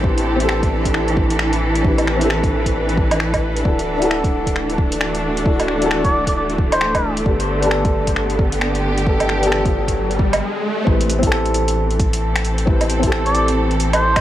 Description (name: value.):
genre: future garage.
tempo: 133 BPM.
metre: 4/4.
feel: swing 61% on 16ths.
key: A dorian.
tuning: A4 = 439 Hz.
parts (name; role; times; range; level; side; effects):
dark upright piano; accompaniment; 0.0-14.2 s; B3 to B4; -22 LUFS; left 1 dB; sidechain pumping, tape echo.
rich studio string section; sustained chords; 0.0-14.2 s; D3 to B4; -22 LUFS; right 1 dB; vintage 12-bit sampler grit, sidechain pumping.
soft dub sub bass; bass; 0.0-14.2 s; D1 to A1; -22 LUFS; equal; none.
electronic kick drum; drums; 0.0-14.2 s; none; -19 LUFS; equal; vintage 12-bit sampler grit, small room ambience.
backwards swelling texture; texture; 0.0-14.2 s; A3 to D5; -32 LUFS; right 1 dB; none.
deep house drum kit; drums; 0.2-14.2 s; finger snaps, hi-hat, woodblock; -23 LUFS; equal; vintage 12-bit sampler grit, small room ambience.
trumpet with cup mute; melody; 6.0-7.2, 13.3-14.2 s; C5 to D5; -23 LUFS; equal; tape echo.
riser; sound effects; 9.2-10.9 s; none; -26 LUFS; right 1 dB; none.
room: light reverb.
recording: vinyl crackle.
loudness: -15 LUFS.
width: side -12 dB against mid.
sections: 0.0-10.9 A section; 10.9-14.2 B section.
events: riser 9.2-10.9; stop 10.4-10.9.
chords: 0.0 Am7; 3.6 Dadd9; 7.3 Gadd9; 10.9 Am7.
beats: | 0.04 0.49 0.94 1.40 | 1.85 2.30 2.75 3.20 | 3.65 4.10 4.55 5.00 | 5.46 5.91 6.36 6.81 | 7.26 7.71 8.16 8.61 | 9.06 9.52 9.97 10.42 | 10.87 11.32 11.77 12.22 | 12.67 13.12 13.57 14.03.